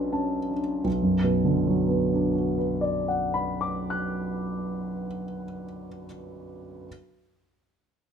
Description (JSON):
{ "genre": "classical, impressionist solo piano", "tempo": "32 BPM (dotted quarters)", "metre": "6/8", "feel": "rubato", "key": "B minor", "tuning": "A4 = 440 Hz", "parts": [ { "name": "warm concert grand piano", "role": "solo", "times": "0.0-6.9 s", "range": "B1 to B6", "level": "-25 LUFS", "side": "equal", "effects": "none" } ], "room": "little or no reverb", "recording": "none", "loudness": "-24 LUFS", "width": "side -7 dB against mid", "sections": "0.9-4.6 A section", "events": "none", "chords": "0.0 Bm7; 0.9 Bm", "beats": "| 0.85 2.73" }